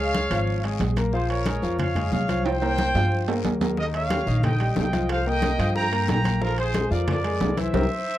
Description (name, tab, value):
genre	latin, salsa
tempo	182 BPM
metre	4/4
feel	straight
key	unclear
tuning	A4 = 440 Hz
part	clear trumpet section	melody	0.0-8.2 s	F4 to Bb5	-27 LUFS	right 1 dB	none
part	clear concert grand piano	accompaniment	0.0-7.8 s	Eb3 to Bb5	-28 LUFS	left 2 dB	none
part	upright bass	bass	0.0-7.9 s	Ab1 to G2	-26 LUFS	equal	none
part	congas	percussion	0.1-7.8 s	none	-29 LUFS	left 1 dB	none
part	guiro	percussion	0.1-7.8 s	none	-42 LUFS	left 18 dB	none
part	timbales	percussion	0.1-7.8 s	none	-31 LUFS	right 8 dB	none
part	bongos	percussion	3.8-7.8 s	none	-33 LUFS	left 4 dB	none
room	light reverb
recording	dry, close 1970s-style studio recording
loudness	-21 LUFS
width	side -13 dB against mid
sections	0.0-8.2 A section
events	drum fill 2.5-3.8; band accent 7.7-8.2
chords	0.0 Db; 1.1 Bbm7; 2.5 C7sus4; 3.8 Eb9; 5.1 C7sus4; 6.4 Bb7